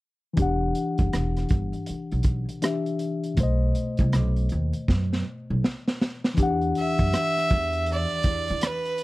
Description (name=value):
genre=R&B, neo-soul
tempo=80 BPM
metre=4/4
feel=swing 62% on 16ths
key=E minor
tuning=A4 = 441 Hz
part: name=mellow reed electric piano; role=accompaniment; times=0.3-9.0 s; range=B2 to F#5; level=-28 LUFS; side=left 3 dB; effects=none
part: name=upright bass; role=bass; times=0.4-8.6 s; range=E1 to E3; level=-26 LUFS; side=equal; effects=none
part: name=crunchy breakbeat drum kit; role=drums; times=0.4-9.0 s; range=hi-hat, kick drum, rim click, snare drum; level=-24 LUFS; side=equal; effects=none
part: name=rich fiddle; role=melody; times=6.8-9.0 s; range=B4 to E5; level=-25 LUFS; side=right 2 dB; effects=none
room=little or no reverb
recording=dry, close 1970s-style studio recording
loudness=-22 LUFS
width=side -19 dB against mid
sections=0.4-6.4 A section; 6.4-9.0 B section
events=drum fill 4.9-6.4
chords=0.4 Em9; 3.4 B7b9; 6.4 Em9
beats=| 0.37 1.12 1.87 2.62 | 3.37 4.12 4.87 5.62 | 6.37 7.12 7.87 8.62